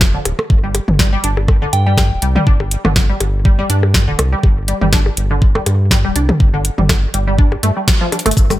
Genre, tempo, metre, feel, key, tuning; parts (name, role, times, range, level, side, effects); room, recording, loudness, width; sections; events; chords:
minimal techno; 122 BPM; 4/4; swing 55% on 16ths; A4 = 439 Hz
round analog bass; bass; 0.0-8.6 s; D1 to G2; -16 LUFS; equal; tube saturation, sidechain pumping
booming analog drum machine; drums; 0.0-8.6 s; hi-hat, shaker, snare drum; -18 LUFS; equal
electronic kick drum; drums; 0.0-8.5 s; -13 LUFS; equal
resonant blip pluck; riff; 0.1-8.6 s; D3 to D4; -21 LUFS; equal; wide subtle chorus, sidechain pumping, tape echo
electronic percussion blips and toms; percussion; 0.3-8.6 s; -20 LUFS; left 1 dB; overdrive, dub echo
soft synth bell; melody; 1.7-1.9 s; G5; -22 LUFS; right 1 dB; chorus, dub echo
little or no reverb; -12 LUFS; side -15 dB against mid
0.0-8.4 A section
band accent 7.9; drum fill 8.1
0.0 G5